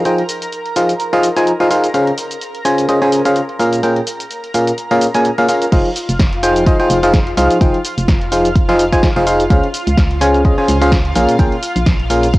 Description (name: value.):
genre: piano house.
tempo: 127 BPM.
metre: 4/4.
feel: swing 56% on 16ths.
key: F minor.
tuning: A4 = 442 Hz.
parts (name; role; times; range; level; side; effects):
analog string pad; sustained chords; 0.0-12.4 s; F4 to Bb5; -24 LUFS; equal; ensemble chorus, phaser, sidechain pumping.
barking FM electric piano; riff; 0.0-12.3 s; Bb2 to Ab5; -13 LUFS; equal; chorus, sidechain pumping, tape echo.
punchy analog drum machine; drums; 0.1-12.4 s; cabasa, crash cymbal, hi-hat, snare drum; -25 LUFS; equal; cassette tape.
organ-like FM bass; bass; 5.7-12.4 s; Eb1 to Db2; -18 LUFS; equal; tube saturation, sidechain pumping.
electronic kick drum; drums; 5.7-12.4 s; none; -13 LUFS; equal; overdrive, cassette tape.
room: light reverb.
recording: home recording on cassette.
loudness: -12 LUFS.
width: side -19 dB against mid.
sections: 0.0-5.7 A section; 5.7-12.4 B section.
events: drop 5.7-12.4.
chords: 0.0 Fm7; 1.9 Dbmaj7; 3.6 Bbm7; 5.7 Fm7; 9.5 Dbmaj7; 11.2 Bbm7.